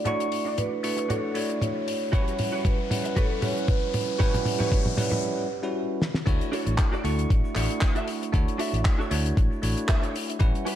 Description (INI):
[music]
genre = nu-disco, nu disco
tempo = 116 BPM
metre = 4/4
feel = swing 54% on 16ths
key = D major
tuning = A4 = 441 Hz
[part]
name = vibraphone with medium mallets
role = melody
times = 0.0-5.2 s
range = G4 to D5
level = -31 LUFS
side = right 3 dB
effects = vintage 12-bit sampler grit, low-pass filter, dub echo
[part]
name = bell-like tine electric piano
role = accompaniment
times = 0.0-10.8 s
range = G3 to C#6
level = -30 LUFS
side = equal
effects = phaser, sidechain pumping, dub echo
[part]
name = riser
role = sound effects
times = 0.8-5.2 s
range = none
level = -37 LUFS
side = left 4 dB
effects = none
[part]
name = direct-recorded clean electric guitar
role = riff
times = 0.1-10.8 s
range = C#4 to E5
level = -35 LUFS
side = right 2 dB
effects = ensemble chorus, low-pass filter, dub echo
[part]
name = fingered electric bass with an envelope filter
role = bass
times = 0.1-10.5 s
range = A1 to D2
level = -27 LUFS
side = equal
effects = tube saturation, sidechain pumping, high-pass filter
[part]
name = damped 70s drum kit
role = drums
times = 0.1-10.8 s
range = crash cymbal, handclaps, hi-hat, shaker, snare drum, toms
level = -30 LUFS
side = equal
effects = none
[part]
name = electronic kick drum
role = drums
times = 2.1-10.5 s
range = none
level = -23 LUFS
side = equal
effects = none
[sound]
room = moderate echo chamber reverb, RT60 1.4 s, small room reverb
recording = echo-heavy mix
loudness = -23 LUFS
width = side -11 dB against mid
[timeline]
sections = 0.0-6.3 A section; 6.3-10.8 B section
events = build-up 0.0-6.3; drum fill 0.0-5.2, 6.0; filter sweep on vibraphone 0.0-6.3; riser 0.8-5.2; break 5.2-6.3; drop 6.3-10.8; clean electric guitar fill 9.6-10.4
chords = 0.0 Dmaj7; 2.1 A13; 6.0 N.C.; 6.3 Dmaj7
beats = | 0.06 0.58 1.10 1.61 | 2.13 2.65 3.17 3.68 | 4.20 4.72 5.24 5.75 | 6.27 6.79 7.30 7.82 | 8.34 8.86 9.37 9.89 | 10.41